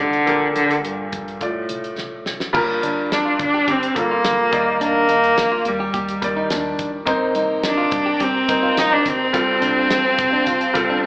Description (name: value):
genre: piano-driven pop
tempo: 106 BPM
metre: 4/4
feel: straight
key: unclear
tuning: A4 = 441 Hz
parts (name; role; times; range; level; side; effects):
- rich cello; melody; 0.0-11.0 s; G2 to Eb4; -18 LUFS; equal; none
- clear baby grand piano; accompaniment; 0.0-11.1 s; G2 to D5; -23 LUFS; left 1 dB; slapback echo
- organ-like FM bass; bass; 0.0-11.0 s; F1 to Eb2; -37 LUFS; equal; none
- damped 70s drum kit; drums; 0.1-10.9 s; crash cymbal, hi-hat, kick drum, snare drum; -26 LUFS; equal; none
- electric guitar at the edge of break-up; riff; 2.5-11.1 s; Bb3 to G4; -26 LUFS; right 1 dB; slapback echo
- warm studio string section; sustained chords; 7.1-11.1 s; G4 to Bb5; -31 LUFS; equal; none
room: moderate plate reverb, RT60 2.3 s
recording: live gig heard through the venue's PA, club ambience, AM radio sound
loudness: -16 LUFS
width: side -22 dB against mid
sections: 0.0-2.5 A section; 2.5-11.1 B section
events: drum fill 2.0-2.5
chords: 0.3 Gmadd9/Bb; 1.4 F6; 2.5 Gm7; 4.5 Ebmaj7; 7.1 Cm7; 9.3 Fadd9